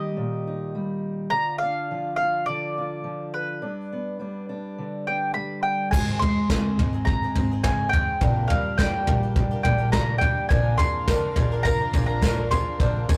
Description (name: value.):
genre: indie folk with a building arrangement.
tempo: 105 BPM.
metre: 4/4.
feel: straight.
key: unclear.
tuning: A4 = 440 Hz.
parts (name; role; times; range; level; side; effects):
mandolin; melody; 0.0-13.2 s; B4 to C6; -29 LUFS; equal; none.
fingerpicked steel-string acoustic guitar; accompaniment; 0.0-13.2 s; G2 to Bb4; -32 LUFS; equal; none.
picked twelve-string acoustic guitar; accompaniment; 5.9-13.2 s; Ab2 to Bb4; -36 LUFS; equal; none.
upright bass; bass; 5.9-13.0 s; Ab1 to Bb1; -29 LUFS; equal; none.
soft brush drum kit; drums; 5.9-13.2 s; crash cymbal, kick drum, snare drum, toms; -26 LUFS; equal; none.
bright studio string section; sustained chords; 10.5-13.2 s; D4 to F5; -42 LUFS; equal; none.
ukulele; arpeggios; 10.5-13.2 s; Ab4 to C5; -34 LUFS; equal; none.
tambourine; percussion; 10.8-13.2 s; none; -46 LUFS; equal; none.
room: moderate booth ambience, RT60 0.2 s.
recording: rough rehearsal-room recording, tube saturation.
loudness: -24 LUFS.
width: mono.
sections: 0.0-5.9 A section; 5.9-13.2 B section.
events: none.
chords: 0.0 Eb; 1.3 Bb/D; 3.6 G; 5.9 Ab; 8.2 Gm/Bb; 10.5 Bbadd9.